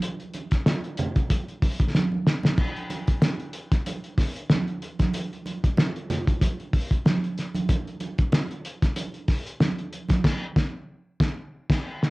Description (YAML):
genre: funk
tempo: 94 BPM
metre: 4/4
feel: swing 56% on 16ths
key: none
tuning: none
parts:
  - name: cloth-damped thuddy drum kit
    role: drums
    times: 0.0-12.1 s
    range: crash cymbal, hi-hat, kick drum, snare drum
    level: -22 LUFS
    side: equal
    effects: cassette tape
  - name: congas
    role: percussion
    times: 0.0-10.2 s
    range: none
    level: -30 LUFS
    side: right 2 dB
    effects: none
room: light reverb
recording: home recording on cassette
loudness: -23 LUFS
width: side -22 dB against mid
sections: 0.0-12.1 A section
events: drum fill 1.9-2.6, 11.5-12.1; band accent 10.2-12.1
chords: none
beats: | 0.03 0.67 1.30 1.94 | 2.58 3.22 3.86 4.50 | 5.13 5.77 6.41 7.05 | 7.69 8.32 8.96 9.60 | 10.24 10.88 11.52